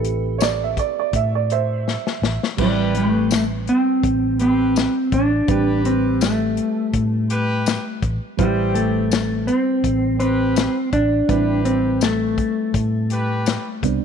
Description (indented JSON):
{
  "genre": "straight-eighth soul blues",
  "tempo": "83 BPM",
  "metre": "4/4",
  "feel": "swing 54% on 16ths",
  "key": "A minor",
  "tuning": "A4 = 440 Hz",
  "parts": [
    { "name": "clean lap steel guitar", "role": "melody", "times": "0.0-13.8 s", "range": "G3 to A4", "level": "-19 LUFS", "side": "left 1 dB", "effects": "none" },
    { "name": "reed electric piano", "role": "accompaniment", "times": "0.0-14.0 s", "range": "G3 to B4", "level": "-28 LUFS", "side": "right 14 dB", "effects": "spring reverb" },
    { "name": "vintage muted fingered electric bass", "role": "bass", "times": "0.0-14.0 s", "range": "A1 to A2", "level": "-23 LUFS", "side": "equal", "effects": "none" },
    { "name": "warm soul drum kit", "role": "drums", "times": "0.0-14.0 s", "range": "crash cymbal, hi-hat, kick drum, snare drum, tambourine", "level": "-23 LUFS", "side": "left 5 dB", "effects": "none" },
    { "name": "dark upright piano", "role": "second line", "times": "0.4-2.4 s", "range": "C5 to E5", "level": "-22 LUFS", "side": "right 13 dB", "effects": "none" },
    { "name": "bright horn section", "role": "sustained chords", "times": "2.6-13.7 s", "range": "C4 to B4", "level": "-30 LUFS", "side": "left 1 dB", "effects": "none" }
  ],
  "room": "light reverb, small room ambience",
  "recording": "1960s-style stereo",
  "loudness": "-17 LUFS",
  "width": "side -7 dB against mid",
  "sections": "0.0-2.6 A section; 2.6-14.0 A section",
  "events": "drum fill 1.9-2.6",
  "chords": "0.0 Am9"
}